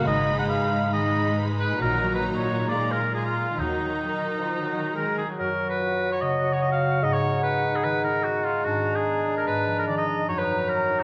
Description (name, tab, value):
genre	classical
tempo	130-148 BPM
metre	4/4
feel	straight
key	Eb minor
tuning	A4 = 438 Hz
part	rich symphonic violin section	melody	0.0-5.2 s	Bb5 to Cb6	-39 LUFS	equal	none
part	clear oboe	second line	0.0-11.0 s	Eb4 to Gb5	-29 LUFS	equal	none
part	rich symphonic violin section	second line	0.0-5.2 s	Eb4 to F4	-36 LUFS	equal	none
part	rich studio viola section	accompaniment	0.0-5.4 s	Eb3 to Ab3	-34 LUFS	equal	none
part	concert harp	arpeggios	0.0-11.0 s	Gb2 to Cb5	-33 LUFS	equal	none
part	warm chamber cello section	bass	0.0-5.2 s	Ab2 to Eb3	-32 LUFS	equal	none
part	rich symphonic double bass section	bass	0.1-4.0 s	Ab1 to Eb2	-36 LUFS	equal	none
part	bright clarinet	second line	5.4-11.0 s	D4 to Gb4	-36 LUFS	equal	none
part	mellow small flute group	second line	5.4-11.0 s	Gb5 to Bb5	-34 LUFS	equal	none
part	mellow bassoon	accompaniment	5.4-11.0 s	Gb3 to Ab3	-30 LUFS	equal	none
room	moderate scoring stage reverb, RT60 1.9 s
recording	worn, warbling old tape, cassette tape, warbly pitch drift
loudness	-25 LUFS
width	mono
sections	0.0-5.4 A section; 5.4-11.0 B section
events	none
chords	0.1 Abm; 1.8 Ebm/Bb; 2.7 Bb5; 3.6 Ebm; 5.4 Gb; 7.0 Ab5; 8.7 Bb7/Ab; 10.3 Ebm/Gb